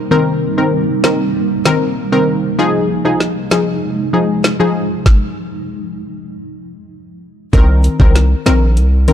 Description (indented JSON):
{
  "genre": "dancehall",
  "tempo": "97 BPM",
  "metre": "4/4",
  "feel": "straight",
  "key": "C minor",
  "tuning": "A4 = 441 Hz",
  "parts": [
    { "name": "granular cloud pad", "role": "sustained chords", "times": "0.0-5.0 s", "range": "C3 to Eb4", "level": "-19 LUFS", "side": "right 2 dB", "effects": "built-in reverb, sidechain pumping" },
    { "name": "analog pluck", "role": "accompaniment", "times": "0.1-9.1 s", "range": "Eb3 to Bb4", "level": "-15 LUFS", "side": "left 2 dB", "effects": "chorus" },
    { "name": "island pop drum kit", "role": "drums", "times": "1.0-9.1 s", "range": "hi-hat, kick drum, snare drum", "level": "-14 LUFS", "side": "equal", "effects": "none" },
    { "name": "hard-hitting 808-style bass", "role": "bass", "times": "7.5-9.1 s", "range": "Bb1 to C2", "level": "-11 LUFS", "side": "equal", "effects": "none" }
  ],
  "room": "light reverb, digital ambience",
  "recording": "dark, warm production",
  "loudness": "-12 LUFS",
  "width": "side -10 dB against mid",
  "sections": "0.0-7.5 A section; 7.5-9.1 B section",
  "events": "stop 5.1-7.5",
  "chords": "0.0 Cm7; 2.6 Fm7; 5.1 N.C.; 7.5 Cm7"
}